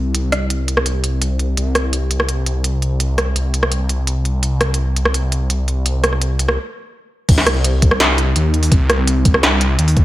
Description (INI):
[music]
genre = half-time drum and bass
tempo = 168 BPM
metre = 4/4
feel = half-time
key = C minor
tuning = A4 = 440 Hz
[part]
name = phased detuned saw bass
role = bass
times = 0.0-10.0 s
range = C2 to Eb2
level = -17 LUFS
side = equal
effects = phaser
[part]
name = industrial drum kit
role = drums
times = 0.1-10.0 s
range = crash cymbal, hi-hat, rim click, snare drum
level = -18 LUFS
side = equal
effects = studio reverb
[part]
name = electronic kick drum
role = drums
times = 7.3-10.0 s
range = none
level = -12 LUFS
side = equal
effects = studio reverb
[sound]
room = digital ambience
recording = none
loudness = -14 LUFS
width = side -16 dB against mid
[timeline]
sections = 0.0-7.3 A section; 7.3-10.0 B section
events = stop 6.6-7.3; drop 7.3-10.0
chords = none